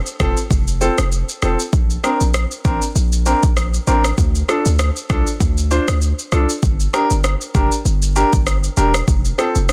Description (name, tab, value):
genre	dancehall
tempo	98 BPM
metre	4/4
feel	swing 56% on 16ths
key	D minor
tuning	A4 = 440 Hz
part	afro-pop drum kit	drums	0.1-9.7 s	kick drum, rim click, shaker	-22 LUFS	equal	overdrive
part	warm grand piano	accompaniment	0.2-9.5 s	C4 to C5	-23 LUFS	equal	none
part	hard-hitting 808-style bass	bass	0.2-9.7 s	E1 to D2	-20 LUFS	equal	none
room	little or no reverb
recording	dense, heavily limited modern master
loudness	-17 LUFS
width	mono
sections	0.0-9.7 A section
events	none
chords	0.0 F; 1.7 Bbadd9; 4.2 Dm; 6.6 Gm; 9.1 F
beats	0.51 1.12 | 1.73 2.34 2.96 3.57 | 4.18 4.79 5.40 6.02 | 6.63 7.24 7.85 8.46 | 9.08 9.69